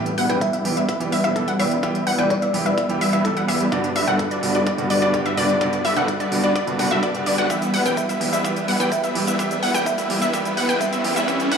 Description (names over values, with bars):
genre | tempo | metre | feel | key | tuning
EDM, festival progressive house | 127 BPM | 4/4 | straight | E minor | A4 = 440 Hz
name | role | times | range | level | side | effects
clear grand piano | accompaniment | 0.0-11.4 s | G2 to B4 | -25 LUFS | right 3 dB | sidechain pumping, tape echo
wide unison pluck | arpeggios | 0.0-11.6 s | D5 to G5 | -24 LUFS | left 1 dB | sidechain pumping, tape echo
supersaw chords | riff | 0.0-11.6 s | G3 to G5 | -23 LUFS | equal | sidechain pumping, low-pass filter, tape echo
wide detuned saw bass | bass | 0.0-11.6 s | E1 to G2 | -33 LUFS | left 2 dB | none
electronic hi-hat and shaker | drums | 0.1-11.6 s | none | -31 LUFS | right 1 dB | none
bell-like FM electric piano | melody | 0.3-2.8, 7.9-11.0 s | B4 to E5 | -27 LUFS | equal | chorus, tape echo
electronic kick drum | drums | 0.4-11.6 s | none | -28 LUFS | left 1 dB | high-pass filter on kick
riser | sound effects | 9.1-11.6 s | none | -28 LUFS | equal | none
room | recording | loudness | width
moderate huge ambient reverb, RT60 5.0 s | played on a big sound system in a bare room, large studio reverb, high-pass filter | -18 LUFS | side -6 dB against mid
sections
0.0-11.6 A section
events
build-up 0.0-11.6; filter sweep on supersaw synth 0.0-11.6; filter sweep 0.0-11.6; drum fill 7.5-11.6; riser 9.1-11.6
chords
0.0 Em; 3.7 Gmaj7; 7.5 Em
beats
0.41 0.89 1.36 | 1.83 2.30 2.78 3.25 | 3.72 4.19 4.67 5.14 | 5.61 6.08 6.56 7.03 | 7.50 7.97 8.45 8.92 | 9.39 9.86 10.34 10.81 | 11.28